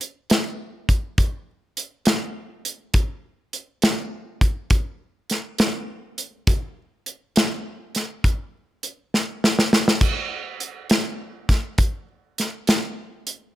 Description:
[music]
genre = blues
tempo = 68 BPM (dotted quarters)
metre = 12/8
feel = straight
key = none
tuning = none
[part]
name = natural country drum kit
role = drums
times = 0.0-13.4 s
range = crash cymbal, hi-hat, kick drum, snare drum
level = -19 LUFS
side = equal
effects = none
[sound]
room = light reverb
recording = none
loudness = -21 LUFS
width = side -14 dB against mid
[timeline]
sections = 0.0-13.6 A section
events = drum fill 9.1-10.0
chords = none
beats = 0.30 1.18 2.06 | 2.94 3.83 4.71 5.59 | 6.48 7.36 8.25 9.13 | 10.02 10.90 11.79 12.67

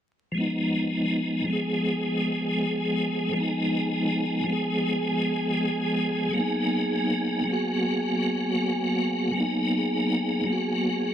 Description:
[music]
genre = trip hop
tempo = 80 BPM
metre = 4/4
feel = straight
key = unclear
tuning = A4 = 441 Hz
[part]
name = tonewheel organ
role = accompaniment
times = 0.3-11.1 s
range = F3 to Ab4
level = -24 LUFS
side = equal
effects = overdrive, chorus vibrato, fast rotary speaker, tremolo, low-pass filter, tape echo
[part]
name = wind-like tuned noise texture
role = texture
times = 1.2-11.1 s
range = Ab4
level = -33 LUFS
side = right 2 dB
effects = built-in reverb
[sound]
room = light reverb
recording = vinyl crackle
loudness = -24 LUFS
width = side -10 dB against mid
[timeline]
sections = 0.4-11.1 A section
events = none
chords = 0.4 Fm7b5; 6.4 G#m9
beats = | 0.35 1.10 1.85 2.60 | 3.35 4.10 4.85 5.60 | 6.35 7.10 7.85 8.60 | 9.35 10.10 10.85

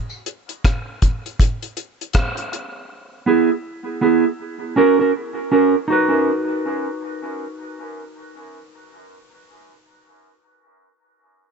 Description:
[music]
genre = dub reggae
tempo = 80 BPM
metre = 4/4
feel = swing 61% on 16ths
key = unclear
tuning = A4 = 441 Hz
[part]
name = deep reggae drum kit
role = drums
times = 0.3-2.7 s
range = hi-hat, kick drum, rim click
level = -19 LUFS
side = equal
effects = none
[part]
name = mellow electric guitar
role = accompaniment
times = 3.3-10.4 s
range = B3 to B4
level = -17 LUFS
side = right 3 dB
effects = dub echo
[sound]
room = light reverb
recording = nothing above 8.0 kHz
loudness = -17 LUFS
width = side -5 dB against mid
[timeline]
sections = 0.0-5.9 A section; 5.9-8.9 B section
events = break 0.0-2.9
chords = 0.0 N.C.; 2.9 E/B; 4.4 F#/C#; 5.9 B/D#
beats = 0.65 1.39 2.14 | 2.89 3.64 4.39 5.14 | 5.89 6.64 7.39 8.14

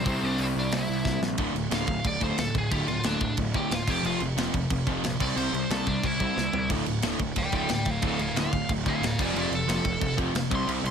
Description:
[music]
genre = punk rock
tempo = 181 BPM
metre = 4/4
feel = straight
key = D minor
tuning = A4 = 440 Hz
[part]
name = biting overdriven guitar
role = melody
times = 0.0-10.9 s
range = C4 to C6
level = -30 LUFS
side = equal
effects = none
[part]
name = crunchy overdriven guitar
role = riff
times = 0.0-10.9 s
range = D2 to C4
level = -31 LUFS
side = right 10 dB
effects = none
[part]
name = overdriven semi-hollow guitar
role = riff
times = 0.0-10.9 s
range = D2 to C4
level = -31 LUFS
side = left 11 dB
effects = none
[part]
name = fuzz picked electric bass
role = bass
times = 0.0-10.9 s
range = D1 to C2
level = -33 LUFS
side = equal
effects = overdrive
[part]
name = tight metal drum kit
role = drums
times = 0.1-10.9 s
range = crash cymbal, hi-hat, kick drum, snare drum, toms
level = -30 LUFS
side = equal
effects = none
[sound]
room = light reverb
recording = none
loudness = -24 LUFS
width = side -7 dB against mid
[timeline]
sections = 0.0-1.4 A section; 1.4-10.9 B section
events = half time 0.0-1.4; drum fill 1.1-1.4, 6.4-6.7; overdriven electric guitar solo 1.4-10.9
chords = 0.0 C; 1.4 Dm; 3.9 F5; 5.2 C; 6.7 Dm; 9.2 F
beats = | 0.06 0.39 0.72 1.05 | 1.39 1.72 2.05 2.38 | 2.71 3.04 3.38 3.71 | 4.04 4.37 4.71 5.04 | 5.37 5.70 6.04 6.37 | 6.70 7.03 7.37 7.70 | 8.03 8.36 8.69 9.03 | 9.36 9.69 10.02 10.35 | 10.68

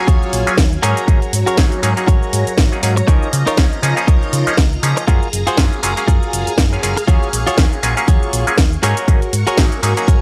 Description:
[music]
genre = filtered disco house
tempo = 120 BPM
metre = 4/4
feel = swing 56% on 16ths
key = unclear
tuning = A4 = 440 Hz
[part]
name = auto-wah clav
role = accompaniment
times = 0.0-10.2 s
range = F3 to F5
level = -24 LUFS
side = equal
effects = phaser, sidechain pumping
[part]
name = string machine, full ensemble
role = sustained chords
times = 0.0-10.2 s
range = Gb3 to Db6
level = -27 LUFS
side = equal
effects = phaser, ensemble chorus, sidechain pumping
[part]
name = direct-recorded clean electric guitar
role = riff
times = 0.1-10.2 s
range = Eb4 to Db5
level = -23 LUFS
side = equal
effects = sidechain pumping
[part]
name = fingered electric bass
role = bass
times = 0.1-10.2 s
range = Gb1 to Db3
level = -22 LUFS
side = equal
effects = sidechain pumping
[part]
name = electronic kick drum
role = drums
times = 0.1-10.2 s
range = none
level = -16 LUFS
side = equal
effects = small room reverb
[part]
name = house drum kit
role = drums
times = 0.1-10.2 s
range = hi-hat, shaker, snare drum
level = -22 LUFS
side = equal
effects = sidechain pumping on hats, small room reverb, sidechain pumping on perc
[sound]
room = digital ambience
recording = dry, gritty hardware recording, transformer saturation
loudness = -15 LUFS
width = mono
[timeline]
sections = 0.0-10.2 A section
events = none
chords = 0.0 Ebm11; 0.8 Ab9sus4; 3.1 Db69; 5.1 Gbmaj9; 7.1 Ebm11; 8.8 Ab9sus4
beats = 0.08 0.58 | 1.08 1.58 2.08 2.58 | 3.08 3.58 4.08 4.58 | 5.08 5.58 6.08 6.58 | 7.08 7.58 8.08 8.58 | 9.08 9.58 10.08

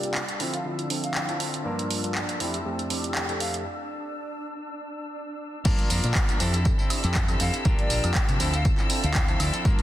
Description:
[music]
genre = filtered disco house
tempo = 120 BPM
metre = 4/4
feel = swing 55% on 16ths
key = unclear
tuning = A4 = 444 Hz
[part]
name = breathy silver concert flute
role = melody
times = 0.0-3.5, 7.4-9.4 s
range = D5 to F5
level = -35 LUFS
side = equal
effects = sidechain pumping, low-pass filter, digital delay
[part]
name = overdriven tine electric piano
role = accompaniment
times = 0.0-9.8 s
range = F2 to A5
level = -33 LUFS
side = equal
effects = phaser, sidechain pumping, low-pass filter
[part]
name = muted studio string section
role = sustained chords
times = 0.0-9.8 s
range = D4 to E6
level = -34 LUFS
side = equal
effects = sidechain pumping, low-pass filter
[part]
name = semi-hollow electric guitar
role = riff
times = 0.0-9.8 s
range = E3 to Bb4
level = -34 LUFS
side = left 1 dB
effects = sidechain pumping, low-pass filter
[part]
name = punchy analog drum machine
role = drums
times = 0.0-9.8 s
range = crash cymbal, handclaps, hi-hat, tambourine, woodblock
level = -29 LUFS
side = right 1 dB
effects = sidechain pumping on hats, sidechain pumping on cymbals, sidechain pumping on perc
[part]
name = fingered electric bass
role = bass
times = 5.7-9.8 s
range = G1 to C3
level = -27 LUFS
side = equal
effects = sidechain pumping, low-pass filter
[part]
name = electronic kick drum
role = drums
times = 5.7-9.8 s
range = none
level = -24 LUFS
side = equal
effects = none
[sound]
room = light reverb, digital ambience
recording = dense, heavily limited modern master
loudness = -23 LUFS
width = side -13 dB against mid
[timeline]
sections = 0.0-5.7 A section; 5.7-9.8 B section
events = filter sweep 0.0-5.7; break 3.7-5.7; drop 5.7-9.8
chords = 0.4 Dm9; 1.7 Gm7; 2.4 Fmaj7; 3.7 Dsus2; 5.7 Gm7; 6.4 Fmaj7; 7.7 C9sus4; 8.4 Dm9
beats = 0.15 0.65 1.15 | 1.65 2.15 2.65 3.15 | 3.65 4.15 4.65 5.15 | 5.65 6.15 6.65 7.15 | 7.65 8.15 8.65 9.15 | 9.65

